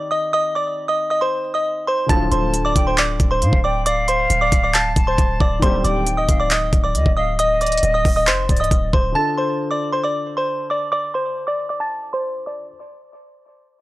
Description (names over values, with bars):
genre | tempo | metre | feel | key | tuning
hip hop, trap | 136 BPM | 4/4 | half-time | D phrygian | A4 = 440 Hz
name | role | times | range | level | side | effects
delicate synth tine bell | melody | 0.0-12.7 s | C5 to A6 | -20 LUFS | equal | chorus, low-pass filter, tape echo
warm concert grand piano | accompaniment | 0.0-12.7 s | D3 to A4 | -30 LUFS | left 3 dB | low-pass filter
dark brass ensemble | stabs | 2.1-2.5, 5.6-6.0 s | D2 to G3 | -25 LUFS | equal | none
warm 808-style bass | bass | 2.1-9.1 s | C1 to A2 | -22 LUFS | equal | none
trap drum kit | drums | 2.1-9.0 s | handclaps, hi-hat, kick drum | -18 LUFS | equal | none
concert flute | second line | 2.3-8.7 s | D5 to A5 | -23 LUFS | equal | tape echo
room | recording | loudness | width
small room ambience | dry, gritty hardware recording | -16 LUFS | side -17 dB against mid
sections
0.0-9.2 A section; 9.2-12.7 B section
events
filter sweep 9.2-12.7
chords
0.0 Cmadd9; 2.1 Dm; 5.6 Cmadd9/D; 9.2 Dm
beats
| 0.33 0.77 1.21 1.65 | 2.10 2.54 2.98 3.42 | 3.86 4.30 4.74 5.18 | 5.62 6.07 6.51 6.95 | 7.39 7.83 8.27 8.71 | 9.15 9.60 10.04 10.48 | 10.92 11.36 11.80 12.24